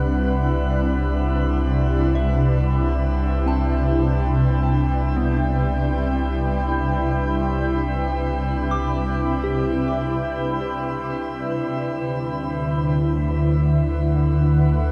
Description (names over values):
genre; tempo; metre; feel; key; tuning
ambient; free time; none; none; C lydian; A4 = 444 Hz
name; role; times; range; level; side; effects
shimmering ambient pad; sustained chords; 0.0-14.9 s; C3 to G5; -23 LUFS; equal; chorus, built-in reverb, phaser
soft synth bell; arpeggios; 0.0-14.9 s; B3 to D6; -35 LUFS; equal; chorus, delay
round analog bass; bass; 0.0-14.9 s; C2 to D2; -26 LUFS; equal; none
room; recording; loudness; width
wet shimmer reverb, RT60 8.6 s; cassette tape; -21 LUFS; mono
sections
0.0-14.9 A section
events
fade-in on synth bell 0.0-14.9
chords
0.0 Cmaj9#11; 11.5 D69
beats
free time